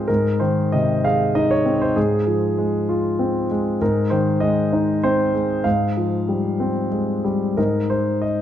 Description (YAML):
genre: classical, lyrical solo piano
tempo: 97 BPM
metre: 3/4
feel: rubato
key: unclear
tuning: A4 = 440 Hz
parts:
  - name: warm concert grand piano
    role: solo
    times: 0.0-8.4 s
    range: Ab2 to F5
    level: -18 LUFS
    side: equal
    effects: none
room: moderate scoring stage reverb, RT60 1.6 s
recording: dark, warm production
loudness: -18 LUFS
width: side -10 dB against mid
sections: 0.0-7.6 A section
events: none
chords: 0.1 Ab; 2.0 Fm/Ab; 3.8 Ab; 5.7 Fmadd9/Ab; 7.6 Abadd9